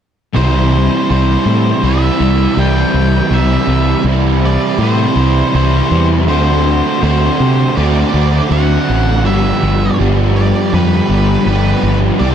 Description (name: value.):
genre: rock.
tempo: 81 BPM.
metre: 4/4.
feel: straight.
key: C major.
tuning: A4 = 441 Hz.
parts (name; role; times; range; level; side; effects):
overdriven semi-hollow guitar; riff; 0.3-12.3 s; G2 to G4; -16 LUFS; right 9 dB; reverse reverb.
thick fuzz guitar; riff; 0.3-12.3 s; G2 to D4; -18 LUFS; left 11 dB; distortion, ensemble chorus.
octave-fuzz lead guitar; melody; 0.4-12.3 s; B4 to G5; -20 LUFS; left 1 dB; distortion, analog delay.
fuzz fingered electric bass; bass; 0.4-12.3 s; G1 to C3; -13 LUFS; left 1 dB; overdrive.
string machine, full ensemble; sustained chords; 12.2-12.3 s; G4 to C6; -24 LUFS; left 6 dB; ensemble chorus.
room: light reverb, digital ambience.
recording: dark, warm production.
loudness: -10 LUFS.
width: side -8 dB against mid.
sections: 0.4-12.3 A section.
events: none.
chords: 0.4 C; 6.3 D7; 9.3 G7.